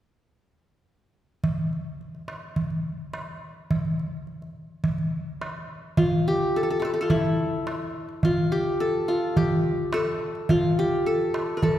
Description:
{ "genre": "Arabic maqam ensemble", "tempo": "106 BPM", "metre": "4/4", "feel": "straight", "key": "A maqam saba", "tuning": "A4 = 440 Hz", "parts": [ { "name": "darbuka", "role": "percussion", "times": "1.4-11.8 s", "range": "none", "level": "-26 LUFS", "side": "right 1 dB", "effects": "none" }, { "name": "qanun", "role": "melody", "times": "6.0-11.8 s", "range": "E4 to Bb4+50c", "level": "-24 LUFS", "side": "left 1 dB", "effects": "none" } ], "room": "wet concert hall reverb, RT60 1.8 s", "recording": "recorded in a church or concert hall", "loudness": "-23 LUFS", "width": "side -12 dB against mid", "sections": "1.4-6.0 A section; 6.0-11.8 B section", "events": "none", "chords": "none", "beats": "| 1.43 2.00 2.57 3.13 | 3.70 4.27 4.83 5.40 | 5.97 6.53 7.10 7.66 | 8.23 8.79 9.36 9.92 | 10.49 11.05 11.62" }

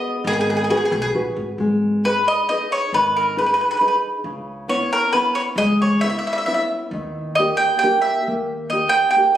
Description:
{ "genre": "italian folk, Italian serenade", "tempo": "135 BPM", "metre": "3/4", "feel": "rubato", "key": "G# minor", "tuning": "A4 = 440 Hz", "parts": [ { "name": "mandolin", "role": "melody", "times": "0.0-9.4 s", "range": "G#4 to G5", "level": "-18 LUFS", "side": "right 1 dB", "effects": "none" }, { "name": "mandolin", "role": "second line", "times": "0.0-1.3 s", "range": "B3", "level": "-32 LUFS", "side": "right 2 dB", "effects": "none" }, { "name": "nylon-string guitar", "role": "accompaniment", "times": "0.0-9.4 s", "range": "C#3 to B4", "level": "-23 LUFS", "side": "left 1 dB", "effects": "none" }, { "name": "upright bass", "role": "bass", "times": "0.2-8.8 s", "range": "G#1 to D#2", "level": "-30 LUFS", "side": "equal", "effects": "none" } ], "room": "moderate recital hall reverb, RT60 1.5 s", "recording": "recorded on a phone in the room, studio reverb", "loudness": "-17 LUFS", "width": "side -11 dB against mid", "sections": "0.0-1.6 A section; 1.6-9.4 A section", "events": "none", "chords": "0.0 G#m7; 1.6 G#m; 4.2 C#m7; 6.9 D#", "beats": "| 0.26 0.70 1.15 | 1.60 2.04 2.49 | 2.94 3.38 3.81 | 4.25 4.69 5.13 | 5.57 6.02 6.47 | 6.92 7.38 7.83 | 8.27 8.72 9.16" }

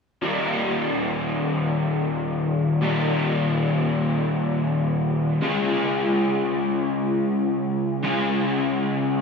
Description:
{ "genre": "rock", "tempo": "free time", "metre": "none", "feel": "none", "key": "Eb major", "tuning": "A4 = 440 Hz", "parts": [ { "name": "crunchy overdriven guitar", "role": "solo", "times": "0.2-9.2 s", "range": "Eb2 to Ab4", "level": "-21 LUFS", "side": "left 1 dB", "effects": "analog chorus" } ], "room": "moderate huge ambient reverb, RT60 7.1 s", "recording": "studio reverb", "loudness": "-21 LUFS", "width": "side -5 dB against mid", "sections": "0.2-9.2 A section", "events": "none", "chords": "0.2 Eb; 5.4 Db", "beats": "free time" }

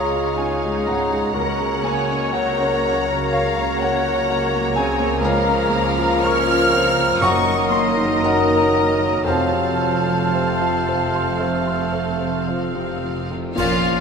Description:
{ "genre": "classical, romantic movement for piano and orchestra", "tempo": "53-64 BPM", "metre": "4/4", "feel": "rubato", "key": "unclear", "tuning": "A4 = 440 Hz", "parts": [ { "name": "bright concert grand piano", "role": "melody", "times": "0.0-14.0 s", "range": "Db2 to F6", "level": "-22 LUFS", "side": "left 2 dB", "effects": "none" }, { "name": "clear symphonic violin section", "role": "melody", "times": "0.0-14.0 s", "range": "Db5 to Bb5", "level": "-29 LUFS", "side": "left 4 dB", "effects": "none" }, { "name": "clear symphonic violin section", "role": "second line", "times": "0.0-14.0 s", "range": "F4 to F6", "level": "-29 LUFS", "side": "left 1 dB", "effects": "none" }, { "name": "large flute ensemble", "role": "second line", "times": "0.0-13.7 s", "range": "Db5 to F6", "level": "-26 LUFS", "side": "right 1 dB", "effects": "none" }, { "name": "mellow clarinet", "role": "second line", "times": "0.0-14.0 s", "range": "F4 to C5", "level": "-29 LUFS", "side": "equal", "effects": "none" }, { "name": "warm oboe", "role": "second line", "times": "0.0-14.0 s", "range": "F4 to F5", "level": "-29 LUFS", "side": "right 1 dB", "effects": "none" }, { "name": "rich symphonic viola section", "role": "accompaniment", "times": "0.0-13.7 s", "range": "F3 to Db5", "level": "-28 LUFS", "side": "right 1 dB", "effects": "none" }, { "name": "warm bassoon", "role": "accompaniment", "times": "0.0-13.8 s", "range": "C3 to Bb3", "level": "-27 LUFS", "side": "right 2 dB", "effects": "none" }, { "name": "mellow French horn section", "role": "sustained chords", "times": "0.0-14.0 s", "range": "C3 to Db4", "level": "-28 LUFS", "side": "left 4 dB", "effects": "none" }, { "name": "clear symphonic double bass section", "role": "bass", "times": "0.0-14.0 s", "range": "F1 to Db2", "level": "-29 LUFS", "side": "right 5 dB", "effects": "none" }, { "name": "dark symphonic cello section", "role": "bass", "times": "0.0-14.0 s", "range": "F2 to F3", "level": "-29 LUFS", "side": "right 4 dB", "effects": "none" }, { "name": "cymbal swell, clash cymbals and concert bass drum", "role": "percussion", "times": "9.3-14.0 s", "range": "none", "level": "-35 LUFS", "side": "left 1 dB", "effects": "none" }, { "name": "mellow trombone section", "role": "sustained chords", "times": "13.6-14.0 s", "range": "Bb2 to F3", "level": "-30 LUFS", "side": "right 5 dB", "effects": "none" } ], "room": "wet scoring stage reverb, RT60 1.6 s", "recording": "minimal, uncompressed stereo recording", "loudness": "-17 LUFS", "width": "side -6 dB against mid", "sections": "0.0-13.6 A section", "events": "band accent 13.6-14.0", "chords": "0.0 Db; 1.3 Gb/Db; 5.2 Bbm/Db; 7.2 Ebm/Gb; 9.3 F", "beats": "0.37 | 1.34 2.33 3.30 4.27 | 5.21 6.22 7.20 8.21 | 9.26 10.34 11.40 12.48 | 13.58" }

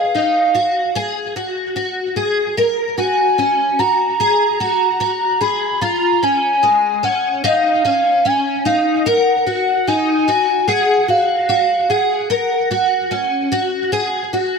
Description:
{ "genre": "dream pop", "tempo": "74 BPM", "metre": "4/4", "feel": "straight", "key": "F# major", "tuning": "A4 = 441 Hz", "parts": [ { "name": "hollow clarinet-like synth lead", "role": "melody", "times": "0.0-14.6 s", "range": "E#5 to B5", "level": "-16 LUFS", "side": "right 1 dB", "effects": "chorus, phaser, digital delay" }, { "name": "picked twelve-string acoustic guitar", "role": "arpeggios", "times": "0.0-14.6 s", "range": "G#3 to A#4", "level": "-18 LUFS", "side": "left 2 dB", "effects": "ensemble chorus, digital delay" } ], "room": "moderate plate reverb, RT60 2.4 s", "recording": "none", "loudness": "-14 LUFS", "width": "side -5 dB against mid", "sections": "0.0-14.6 A section", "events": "none", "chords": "0.0 G#5; 2.6 F#; 5.8 C#add9; 9.1 D#madd9; 12.3 F#", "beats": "0.14 0.95 1.76 | 2.57 3.38 4.19 5.00 | 5.81 6.62 7.43 8.25 | 9.06 9.87 10.68 11.49 | 12.30 13.11 13.92" }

